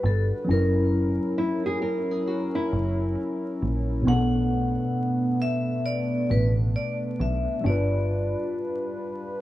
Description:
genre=lo-fi hip hop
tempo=67 BPM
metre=4/4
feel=swing 63% on 16ths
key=unclear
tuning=A4 = 439 Hz
part: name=vibraphone with hard mallets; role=melody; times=0.0-8.5 s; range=A4 to F#5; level=-31 LUFS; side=left 2 dB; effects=low-pass filter
part: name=mellow tine electric piano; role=accompaniment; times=0.0-9.4 s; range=B2 to B4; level=-27 LUFS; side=left 1 dB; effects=medium stereo tremolo, cassette tape, low-pass filter
part: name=warm analog pad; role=sustained chords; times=0.0-9.4 s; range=F#3 to B4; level=-32 LUFS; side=right 1 dB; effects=chorus, low-pass filter
part: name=deep dub fingered electric bass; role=bass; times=0.0-8.3 s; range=F#1 to B1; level=-24 LUFS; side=equal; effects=none
part: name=nylon-string guitar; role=second line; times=1.4-3.9 s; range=E4 to A#4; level=-29 LUFS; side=equal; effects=low-pass filter, analog delay
room=light reverb, studio ambience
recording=worn, warbling old tape, cassette tape, vinyl crackle, warbly pitch drift, small room ambience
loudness=-23 LUFS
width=side -15 dB against mid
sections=0.0-9.4 A section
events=none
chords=0.5 F#7; 4.1 Bm7; 7.6 G7

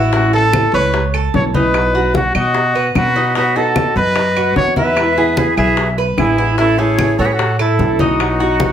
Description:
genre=latin, Cuban son and guajira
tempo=149 BPM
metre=4/4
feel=straight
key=unclear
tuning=A4 = 440 Hz
part: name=warm trumpet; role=melody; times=0.0-8.7 s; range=D#4 to C#5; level=-17 LUFS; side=equal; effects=none
part: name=flamenco guitar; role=accompaniment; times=0.0-8.7 s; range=B2 to F#4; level=-21 LUFS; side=left 1 dB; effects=none
part: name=Cuban tres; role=arpeggios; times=0.0-8.7 s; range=A3 to E5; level=-20 LUFS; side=right 2 dB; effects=none
part: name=upright bass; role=bass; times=0.0-8.7 s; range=A1 to B2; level=-19 LUFS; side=equal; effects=none
part: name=bongos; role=percussion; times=0.1-8.7 s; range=none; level=-23 LUFS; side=left 4 dB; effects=none
part: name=congas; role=percussion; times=0.1-8.7 s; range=none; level=-21 LUFS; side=left 1 dB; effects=none
part: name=claves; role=percussion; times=0.5-8.4 s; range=none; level=-25 LUFS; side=right 4 dB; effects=none
part: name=breathy bright jazz flute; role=second line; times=3.0-8.7 s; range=F#4 to F#5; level=-21 LUFS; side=right 2 dB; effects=none
room=wet studio reverb, RT60 0.5 s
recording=heard from further back in the room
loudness=-12 LUFS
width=side -9 dB against mid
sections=0.0-8.7 A section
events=none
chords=0.1 A; 1.7 B; 5.0 E; 6.6 A; 8.2 B

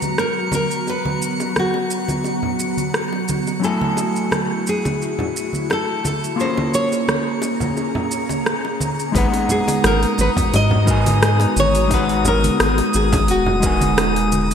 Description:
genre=sunset chillout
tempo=87 BPM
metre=4/4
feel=swing 54% on 16ths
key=G# minor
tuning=A4 = 441 Hz
part: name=nylon-string guitar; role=melody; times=0.0-14.3 s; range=F#4 to D#5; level=-23 LUFS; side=equal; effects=ping-pong delay
part: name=mellow electric guitar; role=accompaniment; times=0.0-14.5 s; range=F#3 to G#5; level=-23 LUFS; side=moving between left 5 dB and right 4 dB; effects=auto-pan
part: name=ethereal airy pad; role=sustained chords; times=0.0-14.5 s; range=F#3 to A#5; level=-24 LUFS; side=left 1 dB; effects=ensemble chorus, built-in reverb
part: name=deep house drum kit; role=drums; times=0.0-14.5 s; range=hi-hat, rim click, shaker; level=-24 LUFS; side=equal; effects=overdrive, studio reverb, gated reverb
part: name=congas and bongos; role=percussion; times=0.0-14.5 s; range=none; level=-26 LUFS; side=right 1 dB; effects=none
part: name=drifting glass-harmonics texture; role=texture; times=0.0-14.5 s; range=D#6 to C#7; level=-28 LUFS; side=left 2 dB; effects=chorus, built-in reverb
part: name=round analog bass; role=bass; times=9.1-14.5 s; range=D#1 to G#2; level=-19 LUFS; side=equal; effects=none
part: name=electronic kick drum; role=drums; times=9.1-13.8 s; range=none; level=-23 LUFS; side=equal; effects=overdrive, studio reverb
room=wet lush hall reverb, RT60 3.2 s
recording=bright 1980s-style digital production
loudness=-16 LUFS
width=side -8 dB against mid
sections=0.0-9.1 A section; 9.1-14.5 B section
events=none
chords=0.0 G#m9; 3.6 F#m9; 6.4 A#m7; 9.1 G#m9

